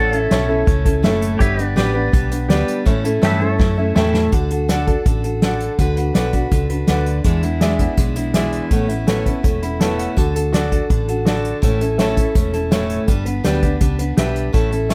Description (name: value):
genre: honky-tonk and classic country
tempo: 164 BPM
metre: 4/4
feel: straight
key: D major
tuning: A4 = 439 Hz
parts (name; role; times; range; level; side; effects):
- picked steel-string acoustic guitar; accompaniment; 0.0-14.9 s; E2 to B4; -23 LUFS; equal; none
- pedal steel guitar; sustained chords; 0.0-4.3 s; G4 to E5; -27 LUFS; equal; none
- hollow-body short-scale fingered electric bass; bass; 0.0-14.9 s; E1 to A2; -24 LUFS; equal; none
- unplugged drum kit; drums; 0.1-14.9 s; hi-hat, kick drum, snare drum; -21 LUFS; equal; none
- bright concert grand piano; accompaniment; 0.3-14.9 s; E4 to B5; -28 LUFS; equal; none
room: little or no reverb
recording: close, detailed microphones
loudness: -18 LUFS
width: mono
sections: 0.0-4.3 A section; 4.3-14.9 B section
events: grand piano fill 0.9-1.4, 3.6-4.3, 9.4-10.2; drum fill 3.6-4.3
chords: 0.0 A; 1.4 G; 2.9 A; 4.3 D; 5.8 Bm; 7.2 E7; 8.7 Aadd9; 10.2 D; 11.6 A; 13.1 G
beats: 0.32 0.68 1.04 | 1.41 1.77 2.14 2.50 | 2.87 3.23 3.60 3.96 | 4.33 4.69 5.06 5.42 | 5.79 6.15 6.52 6.88 | 7.25 7.61 7.98 8.34 | 8.71 9.07 9.44 9.80 | 10.17 10.53 10.90 11.26 | 11.63 11.99 12.35 12.72 | 13.08 13.45 13.81 14.18 | 14.54 14.90